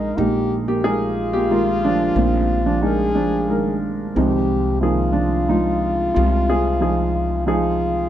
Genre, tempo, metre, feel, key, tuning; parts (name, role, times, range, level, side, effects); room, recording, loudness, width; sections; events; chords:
acoustic folk-pop ballad; 90 BPM; 3/4; straight; A4 = 437 Hz
dark grand piano; melody; 0.0-8.1 s; Bb1 to Bb4; -19 LUFS; right 2 dB
warm French horn; second line; 0.0-8.1 s; Eb4 to Ab4; -23 LUFS; left 3 dB
upright bass; bass; 0.0-8.1 s; Bb1 to C2; -24 LUFS; left 1 dB
light reverb; -17 LUFS; side -11 dB against mid
0.0-8.1 A section
0.0 Bb7sus4; 4.2 Fm7/C